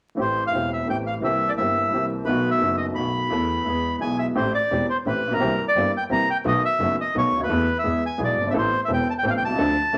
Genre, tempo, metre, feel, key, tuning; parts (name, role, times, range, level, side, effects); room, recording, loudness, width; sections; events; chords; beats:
tango; 172 BPM; 3/4; rubato; A minor; A4 = 439 Hz
clear upright piano; accompaniment; 0.1-10.0 s; E1 to A4; -27 LUFS; equal
bandoneon; melody; 0.2-10.0 s; Bb4 to B5; -25 LUFS; equal
clear double bass; bass; 0.2-10.0 s; E1 to E2; -33 LUFS; equal
moderate studio reverb, RT60 0.8 s; vinyl crackle; -23 LUFS; mono
0.2-4.4 A section; 4.4-10.0 B section
0.2 Am7; 1.2 C7; 2.3 B7; 3.3 Esus4; 3.7 E; 4.4 Am7; 5.4 C7; 6.4 B7; 7.5 Esus4; 7.8 E; 8.5 Amadd9
| 0.18 0.53 0.88 | 1.22 1.57 1.92 | 2.27 2.61 2.96 | 3.31 3.66 4.00 | 4.36 4.71 5.05 | 5.40 5.75 6.10 | 6.45 6.80 7.14 | 7.49 7.84 8.19 | 8.54 8.89 9.24 | 9.59 9.94